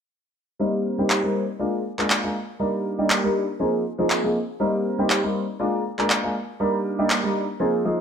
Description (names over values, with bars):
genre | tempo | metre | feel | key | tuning
filtered disco house | 120 BPM | 4/4 | swing 55% on 16ths | unclear | A4 = 444 Hz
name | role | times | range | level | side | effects
bright grand piano | accompaniment | 0.6-8.0 s | F3 to Bb4 | -22 LUFS | equal | phaser, vintage 12-bit sampler grit, low-pass filter
electronic handclaps | drums | 1.1-7.2 s | none | -23 LUFS | equal | none
room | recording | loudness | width
light reverb, small room ambience | none | -21 LUFS | side -7 dB against mid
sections
0.6-8.0 A section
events
filter sweep on grand piano 0.6-8.0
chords
0.6 Cm7; 1.6 Bb7; 2.4 Ebmaj7; 3.6 Ab69; 4.6 Cm7; 5.6 Bb7; 6.3 Ebmaj7